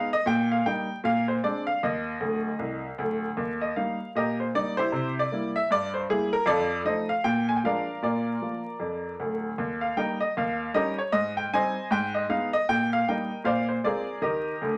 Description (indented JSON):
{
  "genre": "jazz, stride piano",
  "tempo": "155 BPM",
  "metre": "4/4",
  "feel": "swing 61% on 8ths",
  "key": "Eb major",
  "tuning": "A4 = 439 Hz",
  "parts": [
    { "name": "clear upright piano", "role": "solo", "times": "0.0-14.8 s", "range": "D1 to Ab5", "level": "-27 LUFS", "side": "equal", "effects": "none" }
  ],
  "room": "moderate studio reverb, RT60 0.7 s",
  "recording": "vinyl crackle",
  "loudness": "-27 LUFS",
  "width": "mono",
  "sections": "0.0-3.4 A section; 3.4-14.8 A section",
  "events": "upright piano fill 2.2-3.4, 14.6",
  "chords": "0.3 Eb/Bb; 1.0 Bb9; 1.8 Cmadd9/D; 3.4 Eb; 4.9 C7; 6.5 F7; 7.2 Bb7; 8.0 Bb; 9.6 Eb; 10.3 Eb7; 11.1 Abmaj7; 11.9 Abm; 12.7 Eb/Bb; 13.4 Bb9; 14.2 Eb",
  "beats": "| 0.26 0.65 1.04 1.43 | 1.82 2.21 2.59 2.98 | 3.37 3.76 4.14 4.53 | 4.92 5.31 5.70 6.08 | 6.47 6.86 7.25 7.63 | 8.02 8.41 8.79 9.18 | 9.57 9.96 10.34 10.73 | 11.12 11.50 11.89 12.28 | 12.66 13.05 13.44 13.82 | 14.21 14.60"
}